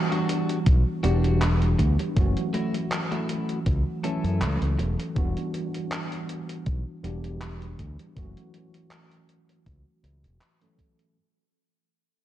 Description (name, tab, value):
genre	vaporwave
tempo	80 BPM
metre	4/4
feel	swing 54% on 16ths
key	unclear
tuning	A4 = 440 Hz
part	tine electric piano	accompaniment	0.0-11.2 s	E3 to A4	-29 LUFS	right 1 dB	overdrive, fast stereo tremolo, analog chorus, analog delay
part	clean electric guitar	riff	0.1-5.0 s	G3 to A4	-34 LUFS	left 2 dB	wide subtle chorus, vintage 12-bit sampler grit, analog delay
part	gated 80s digital drum machine	drums	0.1-11.1 s	handclaps, hi-hat	-34 LUFS	equal	gated reverb
part	modern bright fingered electric bass	bass	0.7-10.4 s	E1 to F#2	-25 LUFS	equal	none
part	electronic kick drum	drums	0.7-10.9 s	none	-24 LUFS	equal	none
room	light reverb, digital ambience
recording	dark, warm production, cassette tape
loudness	-23 LUFS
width	side -13 dB against mid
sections	0.0-11.2 A section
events	fade-out 0.0-11.2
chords	0.0 Em9; 2.2 F#m7; 5.2 Em9; 8.2 F#m7